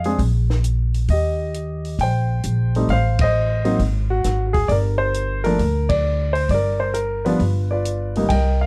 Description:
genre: jazz piano trio.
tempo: 133 BPM.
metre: 4/4.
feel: swing 68% on 8ths.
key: G minor.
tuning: A4 = 440 Hz.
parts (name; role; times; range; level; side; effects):
warm concert grand piano; melody; 0.0-8.7 s; C2 to G5; -24 LUFS; equal; none.
upright bass; bass; 0.0-8.7 s; G1 to F2; -23 LUFS; equal; none.
compact cocktail drum kit; drums; 0.0-8.4 s; hi-hat, kick drum, ride cymbal, snare drum; -29 LUFS; equal; none.
room: light reverb.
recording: dark, warm production.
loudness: -20 LUFS.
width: mono.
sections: 0.0-8.3 A section.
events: band accent 3.1, 5.8.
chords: 0.2 N.C.; 1.1 Eb6; 2.9 Adim; 3.8 F#sus2/G#; 4.7 Gm; 7.4 G7.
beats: 0.19 0.64 | 1.09 1.54 1.99 2.44 | 2.89 3.34 3.79 4.25 | 4.70 5.15 5.60 6.05 | 6.50 6.95 7.40 7.85 | 8.30.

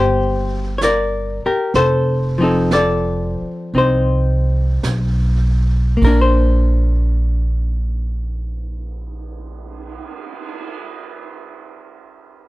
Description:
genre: jazz ballad.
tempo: 49-68 BPM.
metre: 4/4.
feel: swing 68% on 8ths.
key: Bb major.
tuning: A4 = 437 Hz.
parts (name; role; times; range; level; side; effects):
archtop guitar, miked and amplified; accompaniment; 0.0-10.2 s; Eb3 to D5; -17 LUFS; left 2 dB; none.
upright bass; bass; 0.0-10.0 s; F1 to C2; -17 LUFS; right 1 dB; none.
vintage brush drum kit; drums; 0.8-10.7 s; brushed snare drum, cymbal swell, hi-hat, kick drum, ride cymbal, snare drum; -29 LUFS; right 4 dB; none.
room: light reverb.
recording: none.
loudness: -15 LUFS.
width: side -18 dB against mid.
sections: 0.0-6.0 A section; 6.0-10.9 B section.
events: slowing down 0.0-6.0.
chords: 0.0 Cm9; 1.7 F7; 6.0 Bbadd9.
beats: 0.81 | 1.73 2.71 3.73 4.83 | 6.01 7.25 8.48 9.71.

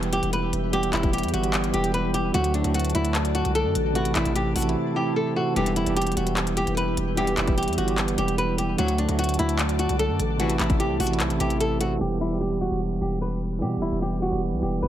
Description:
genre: hip hop, trap.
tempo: 149 BPM.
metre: 4/4.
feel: half-time.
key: E minor.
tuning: A4 = 440 Hz.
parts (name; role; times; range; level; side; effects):
tine electric piano; accompaniment; 0.0-14.9 s; C3 to G4; -27 LUFS; right 4 dB; low-pass filter.
glassy FM pad; sustained chords; 0.0-12.0 s; E4 to A5; -33 LUFS; left 2 dB; ensemble chorus, built-in reverb.
distorted 808-style bass; bass; 0.0-14.9 s; E1 to B2; -28 LUFS; left 1 dB; distortion.
trap drum kit; drums; 0.0-11.9 s; handclaps, hi-hat, kick drum; -28 LUFS; left 1 dB; none.
flamenco guitar; melody; 0.1-14.9 s; D4 to B4; -27 LUFS; equal; low-pass filter, ping-pong delay.
mellow brass ensemble; stabs; 5.6-10.7 s; B1 to F#3; -34 LUFS; left 8 dB; ping-pong delay.
room: digital ambience.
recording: low-pass filter.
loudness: -22 LUFS.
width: side -11 dB against mid.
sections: 0.0-12.0 A section; 12.0-14.9 B section.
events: drums muted 4.8-5.6; filter sweep 12.0-14.9.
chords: 0.0 Em; 2.3 D; 4.0 Am; 5.6 Em; 8.8 D; 10.4 Am; 12.0 Em.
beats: 0.33 | 0.73 1.13 1.54 1.94 | 2.34 2.75 3.15 3.55 | 3.95 4.36 4.76 5.16 | 5.56 5.97 6.37 6.77 | 7.17 7.58 7.98 8.38 | 8.79 9.19 9.59 9.99 | 10.40 10.80 11.20 11.60 | 12.01 12.41 12.81 13.21 | 13.62 14.02 14.42 14.82.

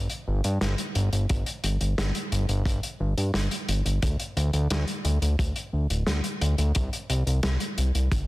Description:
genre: synthwave.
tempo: 88 BPM.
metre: 4/4.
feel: straight.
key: unclear.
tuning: A4 = 440 Hz.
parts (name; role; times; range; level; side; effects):
fat analog bass; bass; 0.0-8.3 s; D1 to G2; -24 LUFS; equal; none.
vintage drum kit; drums; 0.1-8.3 s; hi-hat, snare drum; -30 LUFS; equal; none.
kick drum; drums; 1.3-8.3 s; none; -28 LUFS; equal; none.
room: light reverb.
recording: dense, heavily limited modern master.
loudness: -24 LUFS.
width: side -18 dB against mid.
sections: 0.0-8.3 A section.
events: none.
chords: none.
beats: 0.62 | 1.30 1.98 2.66 3.34 | 4.03 4.71 5.39 6.07 | 6.75 7.43 8.12.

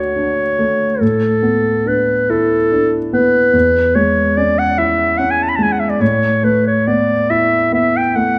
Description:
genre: classical, impressionist duo for clarinet and grand piano.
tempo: 48 BPM (dotted quarters).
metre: 6/8.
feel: rubato.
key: unclear.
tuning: A4 = 442 Hz.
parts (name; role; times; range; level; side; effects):
mellow clarinet; melody; 0.0-8.4 s; A4 to B5; -17 LUFS; equal; none.
dark concert grand piano; accompaniment; 0.0-8.4 s; D2 to F#4; -19 LUFS; equal; none.
room: moderate recital hall reverb, RT60 1.7 s.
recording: none.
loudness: -15 LUFS.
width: mono.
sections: 0.0-8.4 A section.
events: none.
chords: 0.0 Dmaj7; 1.0 Asus24; 3.5 E6; 6.0 Asus2.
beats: | 1.01 2.30 | 3.54 4.77 | 6.01 7.30.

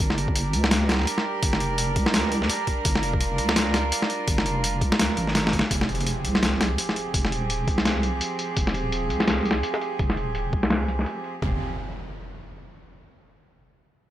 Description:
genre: half-time drum and bass.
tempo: 168 BPM.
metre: 4/4.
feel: swing 59% on 16ths, half-time.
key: F minor.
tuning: A4 = 440 Hz.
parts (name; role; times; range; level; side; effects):
rich symphonic cello section; sustained chords; 0.0-11.6 s; F3 to Bb4; -29 LUFS; right 3 dB; vintage 12-bit sampler grit, sidechain pumping.
deep soft wobble bass; bass; 0.0-11.6 s; Eb1 to Db2; -27 LUFS; equal; chorus.
boom bap sampler-style drum kit; drums; 0.0-11.5 s; kick drum, toms; -26 LUFS; equal; overdrive.
boom bap sampler-style drum kit; drums; 0.0-11.3 s; hi-hat, snare drum; -24 LUFS; left 1 dB; overdrive, low-pass filter on hats, low-pass filter on cymbals, low-pass filter on snare.
impact; sound effects; 5.7-7.1, 11.4-12.9 s; none; -37 LUFS; equal; none.
room: digital ambience.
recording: dry, gritty hardware recording.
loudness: -21 LUFS.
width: side -12 dB against mid.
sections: 0.0-5.7 A section; 5.7-11.4 B section; 11.4-12.9 C section.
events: drop 0.0-5.7; drum fill 5.4-5.7; impact 5.7-7.1; filter sweep on drum 5.7-11.4.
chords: 0.0 Gdim; 5.7 Fm.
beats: | 0.00 0.35 0.71 1.07 | 1.42 1.78 2.14 2.50 | 2.85 3.21 3.57 3.92 | 4.28 4.64 5.00 5.35 | 5.71 6.07 6.42 6.78 | 7.14 7.50 7.85 8.21 | 8.57 8.92 9.28 9.64 | 10.00 10.35 10.71 11.07 | 11.42 11.78 12.14 12.50.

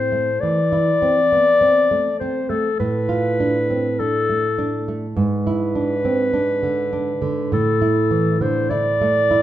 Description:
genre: romantic duo for clarinet and classical guitar.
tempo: 50 BPM.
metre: 4/4.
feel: rubato.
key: A minor.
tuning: A4 = 439 Hz.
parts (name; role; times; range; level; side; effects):
mellow clarinet; melody; 0.0-9.4 s; A4 to D5; -18 LUFS; left 2 dB; none.
nylon-string guitar; accompaniment; 0.0-9.4 s; G#2 to F4; -21 LUFS; right 3 dB; none.
room: moderate recital hall reverb, RT60 1.3 s.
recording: minimal, uncompressed stereo recording.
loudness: -17 LUFS.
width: side -12 dB against mid.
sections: 0.0-9.4 A section.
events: none.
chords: 0.0 Am; 2.8 Bm7b5/A; 5.2 E7/G#; 7.5 A5.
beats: 0.41 1.60 | 2.81 4.01 5.18 6.35 | 7.54 8.71.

